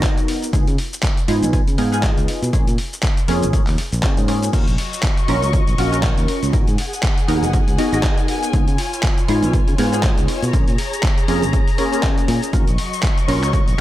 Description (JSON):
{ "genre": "filtered disco house", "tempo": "120 BPM", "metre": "4/4", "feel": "swing 57% on 16ths", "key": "Eb minor", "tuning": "A4 = 440 Hz", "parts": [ { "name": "funky polysynth comp", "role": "accompaniment", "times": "0.0-13.8 s", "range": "Bb3 to Bb4", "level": "-22 LUFS", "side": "equal", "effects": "chorus, phaser, sidechain pumping, low-pass filter" }, { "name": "dusty soul sampler-style drum kit", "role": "drums", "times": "0.0-13.8 s", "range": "crash cymbal, finger snaps, handclaps, hi-hat, shaker", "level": "-26 LUFS", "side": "equal", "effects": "none" }, { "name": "electronic kick drum", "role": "drums", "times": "0.0-13.6 s", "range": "none", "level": "-18 LUFS", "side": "equal", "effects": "overdrive" }, { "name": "overdriven fingered electric bass", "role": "bass", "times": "0.5-13.8 s", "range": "Gb1 to Db3", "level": "-21 LUFS", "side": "equal", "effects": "sidechain pumping, low-pass filter" }, { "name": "dark chamber string section", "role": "sustained chords", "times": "4.5-13.8 s", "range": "Gb3 to Db6", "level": "-26 LUFS", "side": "left 2 dB", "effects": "vintage 12-bit sampler grit, sidechain pumping, low-pass filter" } ], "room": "light reverb", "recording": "none", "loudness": "-16 LUFS", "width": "side -14 dB against mid", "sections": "0.0-13.8 A section", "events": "filter sweep 0.0-13.8", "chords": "0.0 Abm7 (rootless); 0.5 Db7; 2.5 Bbm7; 4.5 Ebm7; 6.5 Abm7; 8.5 Db7; 10.5 Bbm7; 12.5 Ebm7" }